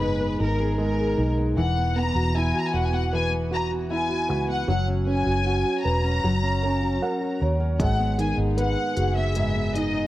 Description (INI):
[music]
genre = pop ballad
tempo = 77 BPM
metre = 4/4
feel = straight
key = unclear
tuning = A4 = 440 Hz
[part]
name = warm symphonic violin section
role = melody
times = 0.0-10.1 s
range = A#4 to A#5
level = -28 LUFS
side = left 2 dB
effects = none
[part]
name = warm grand piano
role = accompaniment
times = 0.0-10.1 s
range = D#3 to F#5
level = -27 LUFS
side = right 3 dB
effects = none
[part]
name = fingerpicked steel-string acoustic guitar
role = arpeggios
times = 0.0-10.1 s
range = G#2 to B4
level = -30 LUFS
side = left 3 dB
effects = tape echo
[part]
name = vintage muted fingered electric bass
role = bass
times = 0.0-10.1 s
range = E1 to D#2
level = -25 LUFS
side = equal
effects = none
[part]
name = deep house drum kit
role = drums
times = 7.8-9.9 s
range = hi-hat, kick drum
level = -26 LUFS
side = equal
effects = none
[sound]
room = light reverb, small room ambience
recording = worn, warbling old tape, cassette tape, warbly pitch drift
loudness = -21 LUFS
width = side -15 dB against mid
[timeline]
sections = 0.0-10.1 A section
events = grand piano fill 6.6-7.8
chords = 0.0 G#madd9; 1.6 Esus2; 6.2 F#; 7.8 G#m7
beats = 0.01 0.79 | 1.57 2.35 3.12 3.90 | 4.68 5.46 6.24 7.02 | 7.80 8.58 9.36